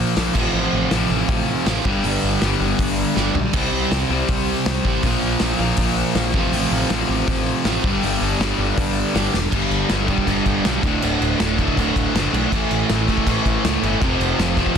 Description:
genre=punk rock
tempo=160 BPM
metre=4/4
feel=straight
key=unclear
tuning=A4 = 439 Hz
part: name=crunchy overdriven guitar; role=riff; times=0.0-14.8 s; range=D2 to C5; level=-24 LUFS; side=right 10 dB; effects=none
part: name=fuzz guitar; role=riff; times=0.0-14.8 s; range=D2 to C4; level=-25 LUFS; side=equal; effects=distortion
part: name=raw garage guitar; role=riff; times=0.0-14.8 s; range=D2 to C4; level=-24 LUFS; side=left 13 dB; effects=overdrive
part: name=modern bright picked electric bass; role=bass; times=0.0-14.8 s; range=D1 to C#2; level=-25 LUFS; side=equal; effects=none
part: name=loose indie drum kit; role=drums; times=0.2-14.8 s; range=crash cymbal, hi-hat, kick drum, snare drum, toms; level=-23 LUFS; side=equal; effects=none
room=little or no reverb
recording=dense, heavily limited modern master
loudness=-17 LUFS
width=side -7 dB against mid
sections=0.0-9.5 A section; 9.5-14.8 B section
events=drum fill 3.2-3.5, 9.3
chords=0.4 F/A; 1.9 G; 3.5 C; 5.0 Bb; 6.4 F/A; 7.8 G; 9.5 G5; 10.8 D5; 12.5 A5; 14.0 F5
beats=0.17 | 0.54 0.92 1.29 1.67 | 2.05 2.42 2.80 3.17 | 3.55 3.92 4.30 4.67 | 5.04 5.42 5.79 6.17 | 6.54 6.91 7.29 7.66 | 8.04 8.41 8.78 9.16 | 9.53 9.90 10.28 10.65 | 11.03 11.40 11.78 12.15 | 12.52 12.90 13.27 13.64 | 14.02 14.39 14.76

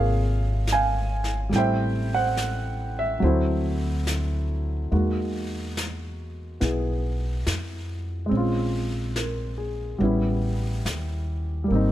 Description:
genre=jazz ballad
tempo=71 BPM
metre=4/4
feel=swing 69% on 8ths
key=unclear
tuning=A4 = 439 Hz
part: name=warm concert grand piano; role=accompaniment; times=0.0-11.9 s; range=C3 to Ab5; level=-26 LUFS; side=right 1 dB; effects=none
part: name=upright bass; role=bass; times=0.0-11.9 s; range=Ab1 to F2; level=-26 LUFS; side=equal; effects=none
part: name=jazz brush drum kit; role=drums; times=0.7-11.9 s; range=brushed snare drum, hi-hat, snare drum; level=-34 LUFS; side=left 1 dB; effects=none
room=little or no reverb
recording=close, detailed microphones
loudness=-23 LUFS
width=side -13 dB against mid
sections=0.0-11.9 A section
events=none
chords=0.0 Db6; 1.5 Am7; 3.2 D9; 4.9 Emaj9#11; 8.3 Bbm7; 10.0 A9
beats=0.67 | 1.52 2.37 3.21 4.06 | 4.91 5.76 6.61 7.46 | 8.30 9.15 10.00 10.85 | 11.69

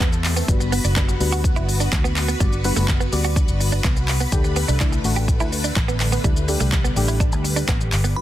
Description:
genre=dance-pop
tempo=125 BPM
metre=4/4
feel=straight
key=unclear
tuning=A4 = 440 Hz
part: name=string machine, violins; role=sustained chords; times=0.0-8.2 s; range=B2 to B4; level=-29 LUFS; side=left 1 dB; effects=ensemble chorus, sidechain pumping
part: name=direct-recorded clean electric guitar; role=riff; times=0.0-8.1 s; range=G3 to G4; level=-29 LUFS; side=right 7 dB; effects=wide subtle chorus
part: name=vintage muted fingered electric bass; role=bass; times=0.0-8.1 s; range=F#1 to E2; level=-22 LUFS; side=equal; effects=sidechain pumping
part: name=deep house drum kit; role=drums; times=0.0-8.2 s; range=handclaps, hi-hat, kick drum, shaker, snare drum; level=-21 LUFS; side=equal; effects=none
part: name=deep mellow chord stab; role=accompaniment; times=0.5-8.2 s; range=G3 to D5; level=-28 LUFS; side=left 3 dB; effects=chorus, sidechain pumping
part: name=glassy synth bell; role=melody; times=8.2 s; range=B5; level=-25 LUFS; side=right 2 dB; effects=chorus, phaser
room=little or no reverb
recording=dense, heavily limited modern master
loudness=-17 LUFS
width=side -13 dB against mid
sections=0.0-8.2 A section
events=drop 0.0-8.2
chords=0.0 Amadd9; 4.3 Dsus4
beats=0.00 | 0.48 0.96 1.44 1.92 | 2.40 2.88 3.36 3.84 | 4.32 4.80 5.28 5.76 | 6.24 6.72 7.20 7.68 | 8.16

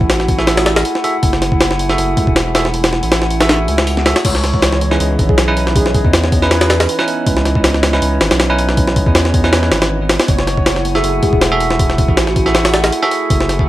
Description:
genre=drum and bass, jungle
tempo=159 BPM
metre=4/4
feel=swing 54% on 16ths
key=C# minor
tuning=A4 = 442 Hz
part: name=warbly tape-like pad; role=sustained chords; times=0.0-13.7 s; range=E3 to G#5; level=-21 LUFS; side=right 1 dB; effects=chorus, built-in reverb
part: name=saturated sub bass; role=bass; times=0.0-13.7 s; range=E1 to E2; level=-18 LUFS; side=equal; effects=tube saturation
part: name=jungle sampler-style drum kit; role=drums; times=0.0-13.7 s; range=crash cymbal, hi-hat, kick drum, snare drum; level=-14 LUFS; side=equal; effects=none
part: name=airy dreamy lead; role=melody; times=0.1-0.6, 4.2-6.9, 10.3-12.6 s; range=F#4 to C#5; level=-24 LUFS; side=equal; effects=chorus, dub echo
part: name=bell-like tine electric piano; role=stabs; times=0.4-13.7 s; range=C#4 to E5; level=-19 LUFS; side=right 2 dB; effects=vintage 12-bit sampler grit, dub echo
room=light reverb, digital ambience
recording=vinyl crackle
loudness=-11 LUFS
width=side -15 dB against mid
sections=0.0-4.2 A section; 4.2-13.7 A section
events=drop 0.0-4.2, 4.2-13.7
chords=0.0 F#m9; 4.2 C#m9; 10.3 F#m9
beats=0.10 0.47 0.85 | 1.23 1.60 1.98 2.36 | 2.74 3.12 3.49 3.87 | 4.25 4.62 5.00 5.38 | 5.76 6.13 6.51 6.89 | 7.26 7.64 8.02 8.40 | 8.78 9.15 9.53 9.91 | 10.28 10.66 11.04 11.42 | 11.79 12.17 12.55 12.93 | 13.30 13.68

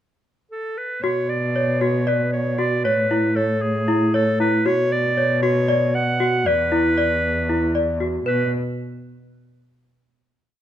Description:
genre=contemporary instrumental, chamber music in an uneven meter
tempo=232 BPM (eighths)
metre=7/8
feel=straight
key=B dorian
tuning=A4 = 440 Hz
part: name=bright clarinet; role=melody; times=0.5-8.5 s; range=G#4 to F#5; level=-23 LUFS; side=right 1 dB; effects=none
part: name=worn celesta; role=arpeggios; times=1.0-8.5 s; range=E4 to D5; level=-21 LUFS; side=left 1 dB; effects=none
part: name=muted cello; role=bass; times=1.0-8.5 s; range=E2 to B2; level=-24 LUFS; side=equal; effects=none
room=moderate recital hall reverb, RT60 1.6 s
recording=close, detailed microphones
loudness=-18 LUFS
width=side -11 dB against mid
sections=0.0-1.0 pickup bar; 1.0-8.3 A section; 8.3-10.1 final note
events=none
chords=0.0 N.C.; 1.0 Bmadd9; 2.8 Amaj7; 4.7 Bmadd9; 6.5 E5; 8.3 N.C.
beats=0.00 0.26 0.52 0.78 | 1.04 1.29 1.55 1.81 2.07 2.33 2.59 | 2.85 3.10 3.36 3.62 3.88 4.14 4.40 | 4.66 4.91 5.17 5.43 5.69 5.95 6.20 | 6.46 6.72 6.98 7.24 7.49 7.75 8.01 | 8.27

